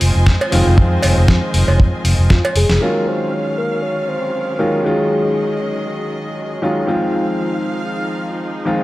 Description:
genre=nu-disco, nu disco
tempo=118 BPM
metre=4/4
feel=swing 56% on 16ths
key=Eb dorian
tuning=A4 = 442 Hz
part: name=warm grand piano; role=accompaniment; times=0.0-8.8 s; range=Eb3 to F4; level=-20 LUFS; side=equal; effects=sidechain pumping, analog delay
part: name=rich studio string section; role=sustained chords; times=0.0-8.8 s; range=Eb3 to Ab5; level=-25 LUFS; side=right 1 dB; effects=sidechain pumping
part: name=fingered electric bass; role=bass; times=0.0-2.8 s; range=F1 to F2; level=-14 LUFS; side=equal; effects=sidechain pumping
part: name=dusty soul sampler-style drum kit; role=drums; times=0.0-2.8 s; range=hi-hat, snare drum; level=-21 LUFS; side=left 1 dB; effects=studio reverb
part: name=kick drum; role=drums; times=0.3-2.4 s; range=none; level=-12 LUFS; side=equal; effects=studio reverb
part: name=cowbell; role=percussion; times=0.4-2.5 s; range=none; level=-21 LUFS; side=right 2 dB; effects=none
part: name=soft octave-layered synth lead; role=melody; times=2.3-5.9 s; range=F4 to Db5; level=-20 LUFS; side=left 1 dB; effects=chorus, cassette tape, tape echo
room=light reverb, studio reverb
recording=none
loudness=-14 LUFS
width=side -17 dB against mid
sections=0.0-2.8 A section; 2.8-8.8 B section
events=drum fill 2.3-2.8; band accent 2.7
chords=0.0 Fm7; 2.8 Ebm11; 6.9 Fm7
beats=0.27 | 0.78 1.29 1.79 2.30 | 2.81 3.32 3.83 4.34 | 4.84 5.35 5.86 6.37 | 6.88 7.39 7.90 8.40

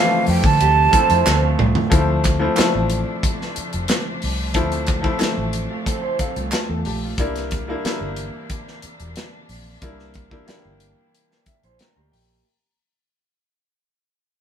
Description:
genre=lush 1970s-style soul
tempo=91 BPM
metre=4/4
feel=straight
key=D minor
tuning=A4 = 440 Hz
part: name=breathy jazz flute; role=melody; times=0.0-1.6 s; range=F5 to A5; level=-17 LUFS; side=right 6 dB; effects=none
part: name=clear baby grand piano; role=accompaniment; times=0.0-12.5 s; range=E3 to Bb5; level=-24 LUFS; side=left 3 dB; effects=none
part: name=rich studio string section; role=sustained chords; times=0.0-12.4 s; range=C3 to D4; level=-32 LUFS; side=right 1 dB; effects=none
part: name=vintage muted fingered electric bass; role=bass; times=0.3-12.4 s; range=E1 to D3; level=-22 LUFS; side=equal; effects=none
part: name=modern studio drum kit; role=drums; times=0.3-12.3 s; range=hi-hat, kick drum, snare drum, toms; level=-22 LUFS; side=equal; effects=none
part: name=electric guitar through a small old amp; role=riff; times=0.6-7.2, 11.6-12.4 s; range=A3 to C5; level=-24 LUFS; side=right 4 dB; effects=none
part: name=group handclap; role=percussion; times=1.3-6.7 s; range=none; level=-27 LUFS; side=right 2 dB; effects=none
part: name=vibraphone with soft mallets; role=texture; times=2.6-3.9, 9.5-12.8 s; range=D5 to Bb5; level=-44 LUFS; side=left 1 dB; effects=none
room=moderate studio reverb, RT60 0.6 s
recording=band playing live in one room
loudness=-17 LUFS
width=side -8 dB against mid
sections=0.0-1.9 A section; 1.9-12.5 B section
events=drum fill 1.3-1.9; fade-out 1.9-12.5; grand piano fill 5.9-7.2, 11.1-12.5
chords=0.0 Dm7; 7.2 C9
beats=0.60 1.26 | 1.92 2.58 3.23 3.89 | 4.55 5.21 5.87 6.53 | 7.19 7.85 8.51 9.16 | 9.82 10.48 11.14 11.80

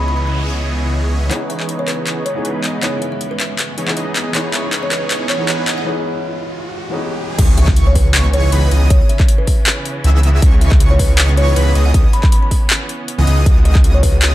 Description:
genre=future bass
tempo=158 BPM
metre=4/4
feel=swing 53% on 16ths, half-time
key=C# minor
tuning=A4 = 440 Hz
part: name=kalimba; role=melody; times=0.0-14.1 s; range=B4 to B5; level=-24 LUFS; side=equal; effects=sidechain pumping, digital delay
part: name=felt-muted upright piano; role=accompaniment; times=0.0-7.4 s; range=D#3 to D#5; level=-24 LUFS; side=left 2 dB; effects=sidechain pumping, digital delay
part: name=clear studio string section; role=sustained chords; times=0.0-14.3 s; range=C#3 to C#5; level=-28 LUFS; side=right 2 dB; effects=sidechain pumping
part: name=supersaw chords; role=riff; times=0.0-14.3 s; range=E3 to E5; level=-23 LUFS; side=right 1 dB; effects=sidechain pumping, low-pass filter
part: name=wide detuned saw bass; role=bass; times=0.0-1.3, 7.4-14.3 s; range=C#2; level=-13 LUFS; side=equal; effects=chorus, sidechain pumping
part: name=noise sweep, riser and impact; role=sound effects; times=0.1-8.9 s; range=none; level=-26 LUFS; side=equal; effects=none
part: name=dubstep drum kit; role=drums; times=1.3-14.3 s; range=crash cymbal, handclaps, hi-hat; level=-19 LUFS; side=left 1 dB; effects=overdrive, high-pass filter on cymbals, high-pass filter on snare, high-pass filter on hats, high-pass filter on room
part: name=airy dreamy lead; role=arpeggios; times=7.4-14.3 s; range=B5 to E6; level=-27 LUFS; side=equal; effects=chorus, sidechain pumping
part: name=electronic kick drum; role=drums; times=7.4-14.1 s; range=none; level=-12 LUFS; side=equal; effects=overdrive
room=light reverb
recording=none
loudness=-12 LUFS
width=side -15 dB against mid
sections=0.0-1.3 A section; 1.3-7.4 B section; 7.4-14.3 C section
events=noise sweep 0.1-1.3; build-up 1.3-7.4; drum fill 1.3-5.9; filter sweep on supersaw synth 1.3-7.4; riser 3.5-7.4; break 5.9-7.4; drop 7.4-14.3; impact 7.4-8.9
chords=0.0 C#m9; 13.5 G#m7/C#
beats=0.17 0.55 0.93 | 1.31 1.69 2.07 2.45 | 2.83 3.21 3.59 3.97 | 4.35 4.73 5.11 5.49 | 5.87 6.25 6.63 7.01 | 7.39 7.77 8.14 8.53 | 8.90 9.29 9.66 10.04 | 10.42 10.80 11.18 11.56 | 11.94 12.32 12.70 13.08 | 13.46 13.84 14.22

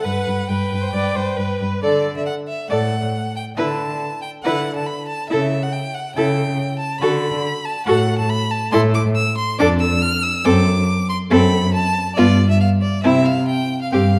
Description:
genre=quick classical-period movement for string quartet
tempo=139 BPM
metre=4/4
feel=straight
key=D major, C major from 8.7 s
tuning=A4 = 439 Hz
part: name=bright violin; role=melody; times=0.0-14.2 s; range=D5 to F6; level=-26 LUFS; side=equal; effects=none
part: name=clear violin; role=second line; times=0.0-14.1 s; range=E4 to D5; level=-26 LUFS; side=equal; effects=none
part: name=rich viola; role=accompaniment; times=0.0-14.1 s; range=B3 to D5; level=-24 LUFS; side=equal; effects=none
part: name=rich cello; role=bass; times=0.1-14.2 s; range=F2 to D3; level=-22 LUFS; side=equal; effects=none
room=wet recital hall reverb, RT60 1.8 s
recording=dark, warm production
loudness=-19 LUFS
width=mono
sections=0.0-1.8 A section; 1.8-14.2 B section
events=none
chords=0.0 G; 1.8 D; 3.6 E5/D; 5.3 A7/C#; 7.0 D; 8.7 A5; 9.6 Dm/F; 10.4 D7/F#; 12.2 G7; 13.0 C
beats=| 0.05 0.50 0.95 1.39 | 1.84 2.27 2.71 3.14 | 3.57 4.00 4.44 4.88 | 5.31 5.73 6.16 6.59 | 7.02 7.45 7.87 8.30 | 8.73 9.16 9.59 10.02 | 10.45 10.88 11.31 11.74 | 12.17 12.60 13.04 13.48 | 13.93

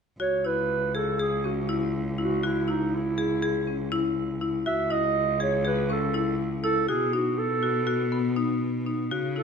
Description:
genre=contemporary instrumental, chamber music in an uneven meter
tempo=242 BPM (eighths)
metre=9/8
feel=straight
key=C# minor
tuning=A4 = 440 Hz
part: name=dark clarinet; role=melody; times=0.2-9.4 s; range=D#4 to E5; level=-27 LUFS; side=right 5 dB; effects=none
part: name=marimba with medium hard mallets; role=arpeggios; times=0.2-9.4 s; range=B3 to G#4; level=-28 LUFS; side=left 6 dB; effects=none
part: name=clear cello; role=bass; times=0.2-9.4 s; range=C#2 to C#3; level=-30 LUFS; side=equal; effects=none
room=light reverb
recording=minimal, uncompressed stereo recording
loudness=-24 LUFS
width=side -6 dB against mid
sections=0.2-9.4 A section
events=none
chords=0.2 C#m; 6.9 B7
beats=| 0.20 0.45 0.70 0.95 1.20 1.45 1.69 1.94 2.19 | 2.44 2.69 2.93 3.18 3.43 3.68 3.92 4.17 4.42 | 4.67 4.92 5.16 5.41 5.66 5.91 6.15 6.40 6.65 | 6.89 7.14 7.39 7.63 7.88 8.13 8.38 8.62 8.87 | 9.12 9.37

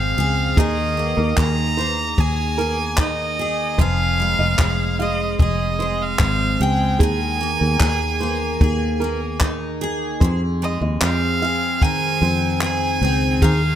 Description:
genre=acoustic pop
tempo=75 BPM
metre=4/4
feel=straight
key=F minor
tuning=A4 = 437 Hz
part: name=clear violin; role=melody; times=0.0-13.8 s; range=Eb5 to Bb5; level=-23 LUFS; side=right 2 dB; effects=ping-pong delay
part: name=picked steel-string acoustic guitar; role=accompaniment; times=0.0-13.8 s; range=F2 to Ab4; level=-24 LUFS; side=equal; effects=double-tracked left and right
part: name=fingered electric bass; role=bass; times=0.0-13.8 s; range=F1 to F2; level=-22 LUFS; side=equal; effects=none
part: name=nylon-string guitar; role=arpeggios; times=0.6-13.6 s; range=Ab4 to F5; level=-28 LUFS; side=right 4 dB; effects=none
part: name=compact cocktail drum kit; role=drums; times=0.6-13.6 s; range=handclaps, kick drum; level=-18 LUFS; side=equal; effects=none
room=little or no reverb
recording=none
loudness=-17 LUFS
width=side -10 dB against mid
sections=0.0-10.2 A section; 10.2-13.8 B section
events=none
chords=0.0 Fm; 0.6 Ebsus4; 3.8 Fm7; 7.0 Ebsus4; 10.2 Fm7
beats=| 0.57 1.38 2.18 2.98 | 3.79 4.59 5.39 6.20 | 7.00 7.80 8.61 9.41 | 10.21 11.01 11.81 12.62 | 13.42

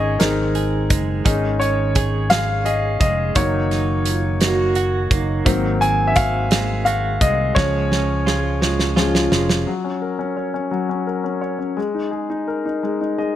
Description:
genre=six-eight pop ballad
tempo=57 BPM (dotted quarters)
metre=6/8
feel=straight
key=unclear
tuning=A4 = 439 Hz
part: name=clear concert grand piano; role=accompaniment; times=0.0-13.4 s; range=F3 to Ab5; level=-20 LUFS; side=left 2 dB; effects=none
part: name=direct-recorded clean electric guitar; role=arpeggios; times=0.0-10.2 s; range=Eb3 to Ab4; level=-27 LUFS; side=right 8 dB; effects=tremolo
part: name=fingered electric bass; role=bass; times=0.0-9.6 s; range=F1 to Db2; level=-22 LUFS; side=equal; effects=none
part: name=loose indie drum kit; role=drums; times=0.2-9.7 s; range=hi-hat, kick drum, snare drum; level=-20 LUFS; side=right 1 dB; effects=none
part: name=dark French horn section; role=second line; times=4.1-9.6 s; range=Eb4 to Ab4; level=-24 LUFS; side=right 3 dB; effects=digital delay
room=light reverb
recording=none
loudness=-17 LUFS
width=side -12 dB against mid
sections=0.0-9.7 A section; 9.7-13.4 B section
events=grand piano solo 0.0-9.7; drum fill 7.6-9.7; grand piano fill 12.8-13.4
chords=0.2 Ab; 1.3 Absus4; 3.4 Ebm/Gb; 5.5 Ab7; 7.6 Db; 9.7 Gb; 11.8 Absus2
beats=0.20 | 1.26 2.31 | 3.36 4.41 | 5.46 6.51 | 7.56 8.61 | 9.67 10.72 | 11.77 12.83

